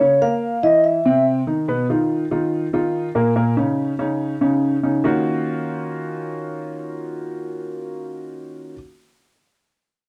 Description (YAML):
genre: jazz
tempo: 143 BPM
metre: 4/4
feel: straight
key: Eb minor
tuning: A4 = 441 Hz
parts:
  - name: vibraphone with soft mallets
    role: melody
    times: 0.0-1.2 s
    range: Db5 to F5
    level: -18 LUFS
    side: equal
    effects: cassette tape
  - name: warm concert grand piano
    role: accompaniment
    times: 0.0-8.7 s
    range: A#2 to B4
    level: -22 LUFS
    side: equal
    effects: cassette tape
room: moderate studio ambience, RT60 0.5 s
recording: home recording on cassette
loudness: -21 LUFS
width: mono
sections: 0.0-1.7 A section; 1.7-5.0 B section; 5.0-8.4 C section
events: none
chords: 0.0 Eb7(no3) (rootless); 0.8 C; 1.7 Bmaj7#11; 3.4 Eb5; 5.0 Ebm9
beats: | 0.00 0.42 0.84 1.26 | 1.68 2.10 2.52 2.94 | 3.36 3.78 4.20 4.62 | 5.04 5.46 5.88 6.30 | 6.72 7.15 7.57 7.99